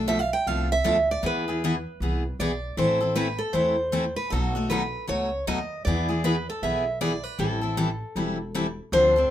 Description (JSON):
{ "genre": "acoustic string swing (jazz manouche)", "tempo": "156 BPM", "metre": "4/4", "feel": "swing 61% on 8ths", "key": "A minor", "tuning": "A4 = 439 Hz", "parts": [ { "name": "picked steel-string acoustic guitar", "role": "accompaniment", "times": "0.0-9.3 s", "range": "B2 to A4", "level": "-26 LUFS", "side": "left 2 dB", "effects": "none" }, { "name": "upright bass", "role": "bass", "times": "0.0-9.3 s", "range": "E1 to E2", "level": "-30 LUFS", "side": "equal", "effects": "none" }, { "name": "picked steel-string acoustic guitar", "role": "melody", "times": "0.1-9.3 s", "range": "A4 to G5", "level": "-25 LUFS", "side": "right 1 dB", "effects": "none" } ], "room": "moderate small room ambience, RT60 0.5 s", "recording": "minimal, uncompressed stereo recording", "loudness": "-23 LUFS", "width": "side -11 dB against mid", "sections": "0.0-8.9 A section", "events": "none", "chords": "0.0 Bm7b5; 1.2 E; 2.8 Am; 4.3 B7; 5.9 E; 7.4 Am7" }